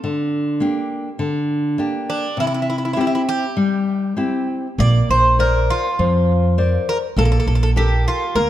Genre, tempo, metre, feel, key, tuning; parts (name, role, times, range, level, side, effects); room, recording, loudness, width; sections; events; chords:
fado-style ballad; 102 BPM; 4/4; rubato; A4 = 442 Hz
nylon-string guitar; accompaniment; 0.0-8.5 s; C3 to D5; -20 LUFS; left 2 dB
Greek bouzouki; melody; 2.1-8.5 s; D4 to D5; -21 LUFS; right 1 dB
upright bass; bass; 4.8-8.5 s; Bb1 to F2; -17 LUFS; right 1 dB
light reverb; -16 LUFS; side -12 dB against mid
0.0-8.5 A section
0.0 Gm/D; 2.4 C; 4.8 Bbadd9; 7.2 Gmadd9/Bb